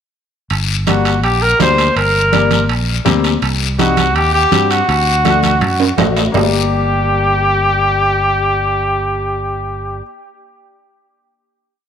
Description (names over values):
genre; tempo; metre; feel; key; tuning
latin, cumbia; 164 BPM; 4/4; straight; G harmonic minor; A4 = 442 Hz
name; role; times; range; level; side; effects
fingered electric bass; bass; 0.5-10.0 s; G1 to G2; -18 LUFS; equal; none
guiro; percussion; 0.5-6.4 s; none; -23 LUFS; left 11 dB; none
timbales; percussion; 0.5-6.4 s; none; -21 LUFS; right 9 dB; none
warm trumpet; melody; 0.9-10.0 s; F#4 to C5; -15 LUFS; equal; none
clear upright piano; accompaniment; 0.9-10.0 s; G3 to G4; -20 LUFS; left 8 dB; none
congas; percussion; 0.9-6.4 s; none; -21 LUFS; right 8 dB; none
room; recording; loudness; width
moderate echo chamber reverb, RT60 2.4 s; 1960s-style stereo with parts hard left and right; -12 LUFS; side -8 dB against mid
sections
0.5-6.3 A section; 6.3-9.3 final chord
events
drum fill 5.8-6.3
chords
0.5 Gm; 3.4 Cm; 4.9 D; 6.3 Gm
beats
| 0.51 0.87 1.23 1.60 | 1.96 2.33 2.69 3.06 | 3.42 3.79 4.16 4.52 | 4.89 5.25 5.62 5.98 | 6.35 6.71 7.07 7.44 | 7.80 8.17 8.53 8.89